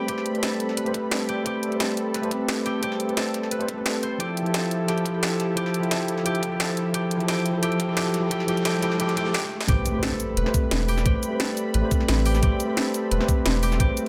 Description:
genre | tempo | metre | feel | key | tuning
liquid drum and bass | 175 BPM | 4/4 | swing 53% on 16ths | A minor | A4 = 440 Hz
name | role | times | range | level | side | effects
mellow tine electric piano | accompaniment | 0.0-14.1 s | F3 to C5 | -28 LUFS | equal | delay
lush unison pad | sustained chords | 0.0-14.1 s | F3 to B5 | -35 LUFS | equal | chorus
concert harp | arpeggios | 0.0-14.1 s | G4 to C5 | -34 LUFS | equal | delay
drum and bass drum kit | drums | 0.1-14.1 s | hi-hat, shaker, snare drum | -30 LUFS | equal | overdrive, high-pass filter on hats, high-pass filter on snare, high-pass filter on perc
electronic kick drum | drums | 0.1-13.9 s | none | -27 LUFS | equal | high-pass filter on kick, high-pass filter on room
riser and impact | sound effects | 6.6-11.1 s | none | -37 LUFS | equal | none
warm sub bass | bass | 9.7-13.9 s | E1 to A1 | -26 LUFS | equal | none
room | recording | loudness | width
moderate digital room reverb, RT60 1.1 s | none | -24 LUFS | mono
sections
0.0-9.7 A section; 9.7-14.1 B section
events
build-up 0.0-9.7; drum fill 9.3-9.7; stop 9.3-9.7; drop 9.7-14.1; impact 9.7-11.1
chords
0.0 Am9; 4.2 Fmaj9; 9.7 Am9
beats
| 0.09 0.43 0.77 1.11 | 1.46 1.80 2.14 2.48 | 2.83 3.17 3.51 3.86 | 4.20 4.54 4.88 5.23 | 5.57 5.91 6.26 6.60 | 6.94 7.29 7.63 7.97 | 8.31 8.66 9.00 9.34 | 9.69 10.03 10.37 10.71 | 11.06 11.40 11.74 12.09 | 12.43 12.77 13.11 13.46 | 13.80

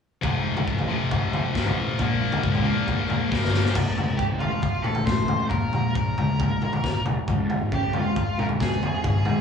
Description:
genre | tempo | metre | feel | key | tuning
quiet-loud alternative rock | 136 BPM | 4/4 | straight | unclear | A4 = 440 Hz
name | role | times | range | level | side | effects
fingerpicked steel-string acoustic guitar | arpeggios | 0.2-9.4 s | F2 to Bb3 | -31 LUFS | equal | slapback echo
high-gain distorted guitar | riff | 0.2-3.8 s | F2 to Bb3 | -26 LUFS | left 8 dB | distortion, slapback echo
fuzz picked electric bass | bass | 0.2-9.4 s | F1 to Db3 | -28 LUFS | left 2 dB | overdrive
raw garage drum kit | drums | 0.2-9.4 s | crash cymbal, kick drum, snare drum, toms | -25 LUFS | equal | none
octave-fuzz lead guitar | melody | 4.2-9.4 s | F4 to C5 | -29 LUFS | equal | distortion, slapback echo, tape echo
room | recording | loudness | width
small room reverb | live gig heard through the venue's PA, club reverb | -21 LUFS | side -6 dB against mid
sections
0.2-3.7 A section; 3.7-9.4 B section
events
drum fill 3.3-3.7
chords
0.2 F; 2.0 Bbm; 3.7 F; 5.5 Bbm; 7.3 Db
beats
| 0.21 0.66 1.10 1.54 | 1.98 2.42 2.86 3.30 | 3.74 4.18 4.62 5.07 | 5.51 5.95 6.39 6.83 | 7.27 7.72 8.16 8.60 | 9.04

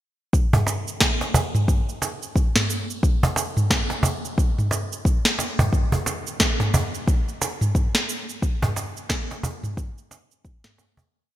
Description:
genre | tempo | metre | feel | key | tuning
downtempo | 89 BPM | 4/4 | swing 59% on 16ths | none | none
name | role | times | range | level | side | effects
afro-pop drum kit | drums | 0.3-11.1 s | shaker, snare drum, toms | -24 LUFS | equal | studio reverb, gated reverb
electronic kick drum | drums | 0.3-10.6 s | none | -21 LUFS | equal | studio reverb
cajon | percussion | 0.5-11.1 s | none | -25 LUFS | right 1 dB | none
room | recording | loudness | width
light reverb | bright 1980s-style digital production | -20 LUFS | side -13 dB against mid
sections
0.3-11.1 groove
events
fade-out 7.5-11.1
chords
none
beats
| 0.33 1.01 1.68 2.36 | 3.03 3.70 4.38 5.05 | 5.73 6.40 7.08 7.75 | 8.42 9.10 9.77 10.45

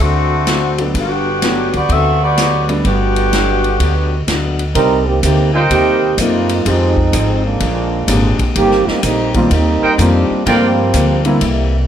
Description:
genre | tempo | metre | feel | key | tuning
jazz, big band swing | 126 BPM | 4/4 | swing 66% on 8ths | unclear | A4 = 440 Hz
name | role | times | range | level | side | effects
mellow saxophone section | melody | 0.0-4.2 s | D3 to E5 | -16 LUFS | equal | none
picked acoustic archtop guitar | accompaniment | 0.0-11.8 s | F2 to G4 | -22 LUFS | left 5 dB | none
upright bass | bass | 0.0-11.9 s | G1 to G2 | -16 LUFS | equal | none
swinging big-band drum kit | drums | 0.5-11.6 s | hi-hat, kick drum, ride cymbal, snare drum | -21 LUFS | left 1 dB | none
warm baby grand piano | accompaniment | 0.8-3.3, 6.7-11.4 s | D3 to G4 | -19 LUFS | equal | none
warm trombone section | second line | 4.8-11.9 s | C3 to Bb4 | -16 LUFS | right 3 dB | none
clear trumpet section | stabs | 5.5-6.2, 9.8-10.7 s | Eb4 to G5 | -16 LUFS | right 2 dB | none
room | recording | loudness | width
moderate large studio reverb, RT60 1.3 s | none | -12 LUFS | side -9 dB against mid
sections
0.0-4.8 A section; 4.8-11.9 B section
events
trombone section solo 4.8-11.9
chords
0.0 D7; 0.9 Gmaj7; 4.8 Cm7; 6.7 Fm7; 7.6 Bb7; 8.6 Eb6; 10.5 Gm7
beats
0.47 | 0.95 1.42 1.90 2.38 | 2.85 3.33 3.80 4.28 | 4.76 5.23 5.71 6.18 | 6.66 7.13 7.61 8.09 | 8.56 9.04 9.51 9.99 | 10.46 10.94 11.41

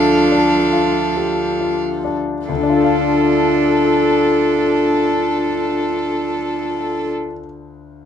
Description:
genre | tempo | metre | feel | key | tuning
classical, slow romantic movement for piano quintet | 45 BPM | 3/4 | rubato | D minor | A4 = 438 Hz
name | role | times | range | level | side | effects
rich violin | melody | 0.0-7.1 s | A4 to F5 | -23 LUFS | left 7 dB | none
rich cello | second line | 0.0-7.1 s | D4 | -20 LUFS | right 4 dB | none
warm violin | second line | 0.0-7.1 s | A4 | -23 LUFS | left 1 dB | none
clear grand piano | accompaniment | 0.0-8.1 s | D2 to F5 | -21 LUFS | left 4 dB | none
warm viola | accompaniment | 0.0-7.1 s | F3 to F4 | -21 LUFS | right 1 dB | none
room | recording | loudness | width
light reverb | dark, warm production | -14 LUFS | side -8 dB against mid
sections
0.0-2.5 A section; 2.5-6.5 B section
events
slowing down 0.0-2.5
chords
0.0 Dm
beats
1.16 | 2.48 3.80 5.12

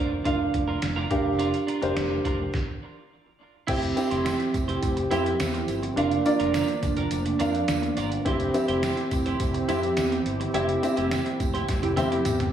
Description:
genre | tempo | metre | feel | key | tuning
1980s-style pop | 105 BPM | 4/4 | straight | unclear | A4 = 439 Hz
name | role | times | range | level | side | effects
dark baby grand piano | accompaniment | 0.0-12.5 s | C4 to F5 | -26 LUFS | equal | none
twelve-string electric guitar | riff | 0.0-12.4 s | D4 to C5 | -33 LUFS | right 5 dB | lush chorus, tape echo
mellow fretless electric bass | bass | 0.0-12.5 s | F1 to F2 | -31 LUFS | equal | none
trip hop sampler-style drum kit | drums | 0.3-12.5 s | crash cymbal, hi-hat, kick drum, snare drum, toms | -31 LUFS | equal | none
warm analog pad | sustained chords | 3.7-12.5 s | F3 to G4 | -30 LUFS | right 3 dB | wide subtle chorus
tambourine | percussion | 3.7-12.4 s | none | -45 LUFS | right 7 dB | none
funky polysynth comp | stabs | 11.8-12.2 s | C4 to G4 | -30 LUFS | right 2 dB | chorus, tape echo
room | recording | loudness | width
wet plate reverb, RT60 1.3 s | dreamy mix soaked in reverb, small room ambience | -23 LUFS | side -9 dB against mid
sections
0.0-3.7 A section; 3.7-12.5 B section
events
stop 2.5-3.7; band accent 10.5-12.5; drum fill 11.7-12.5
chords
0.0 Bb/F; 1.1 Gm7/F; 2.5 N.C.; 3.7 C/F; 6.0 Bb/F; 8.3 C/F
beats
0.26 0.83 | 1.40 1.97 2.54 3.12 | 3.69 4.26 4.83 5.40 | 5.97 6.54 7.12 7.69 | 8.26 8.83 9.40 9.97 | 10.54 11.12 11.69 12.26

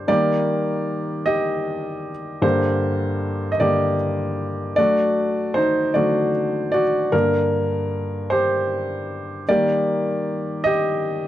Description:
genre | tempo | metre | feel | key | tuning
pop | 51 BPM (dotted quarters) | 6/8 | straight | G harmonic minor | A4 = 442 Hz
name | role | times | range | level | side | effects
warm baby grand piano | solo | 0.0-11.3 s | G2 to Eb5 | -19 LUFS | equal | none
room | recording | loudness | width
studio reverb | dry, close 1970s-style studio recording | -19 LUFS | side -13 dB against mid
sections
0.0-11.3 A section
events
grand piano solo 0.0-11.3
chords
0.1 Eb; 2.4 Gm; 4.8 D; 7.1 Gm; 9.5 Eb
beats
| 0.09 1.26 | 2.44 3.61 | 4.78 5.96 | 7.13 8.30 | 9.48 10.65

